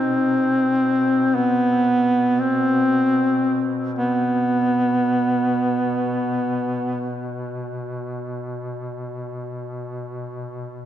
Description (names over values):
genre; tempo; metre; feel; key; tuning
caucasian folk, Caucasian lament; free time; none; none; unclear; A4 = 440 Hz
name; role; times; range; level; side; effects
warm duduk; melody; 0.0-7.1 s; B3 to C4; -18 LUFS; equal; none
warm duduk; drone; 0.0-10.9 s; B2; -30 LUFS; left 1 dB; none
room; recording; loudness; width
wet cathedral reverb, RT60 5.0 s; none; -18 LUFS; side -11 dB against mid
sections
0.0-10.9 A section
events
none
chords
none